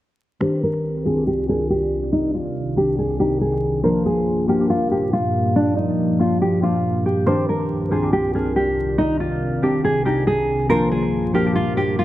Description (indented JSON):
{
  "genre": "hip hop",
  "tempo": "140 BPM",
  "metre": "4/4",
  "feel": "half-time",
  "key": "C minor",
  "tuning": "A4 = 440 Hz",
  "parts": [
    { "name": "nylon-string guitar", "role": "melody", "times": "0.4-12.0 s", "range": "D4 to C5", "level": "-20 LUFS", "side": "equal", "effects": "low-pass filter, analog delay" },
    { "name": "glassy digital keys", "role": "accompaniment", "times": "0.4-12.0 s", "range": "Eb3 to Bb4", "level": "-22 LUFS", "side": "left 1 dB", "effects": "chorus, low-pass filter" },
    { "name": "deep dark ambient pad", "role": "sustained chords", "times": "1.1-12.0 s", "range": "C2 to D5", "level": "-24 LUFS", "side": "equal", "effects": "chorus, built-in reverb, low-pass filter" }
  ],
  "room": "light reverb",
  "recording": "dark, warm production, vinyl crackle",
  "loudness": "-18 LUFS",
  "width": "side -14 dB against mid",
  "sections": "0.4-12.0 A section",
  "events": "filter sweep 0.4-12.0",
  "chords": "0.4 Cmadd9; 3.8 Gm7; 7.3 Cmadd9; 10.7 Gm7"
}